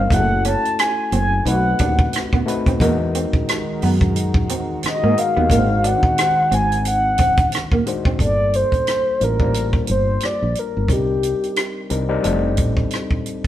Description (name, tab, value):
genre	R&B, neo-soul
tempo	89 BPM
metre	4/4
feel	swing 58% on 16ths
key	unclear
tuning	A4 = 440 Hz
part	mellow horn-like synth lead	melody	0.0-11.9 s	G4 to A5	-19 LUFS	equal	chorus
part	electric guitar through a small old amp	second line	0.0-8.2 s	A3 to D4	-25 LUFS	right 4 dB	spring reverb
part	overdriven reed electric piano	accompaniment	0.0-13.5 s	G3 to C5	-25 LUFS	left 3 dB	none
part	woody fretless electric bass	bass	0.0-12.9 s	F1 to G#2	-21 LUFS	equal	none
part	compact cocktail drum kit	drums	0.1-13.5 s	hi-hat, kick drum, rim click	-21 LUFS	equal	none
part	lush unison pad	sustained chords	3.3-8.2 s	D#3 to A#4	-28 LUFS	equal	chorus
room	moderate stone room reverb, RT60 1.2 s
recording	band playing live in one room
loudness	-16 LUFS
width	side -12 dB against mid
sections	0.0-8.2 A section; 8.2-13.5 B section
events	none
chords	0.1 F#m7; 1.5 B7b9; 2.8 Emaj9#11; 5.5 Ab7#11; 8.2 Gm7; 10.9 Cm7; 12.2 F13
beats	| 0.10 0.78 1.45 2.13 | 2.80 3.48 4.15 4.82 | 5.50 6.17 6.85 7.52 | 8.19 8.87 9.54 10.22 | 10.89 11.56 12.24 12.91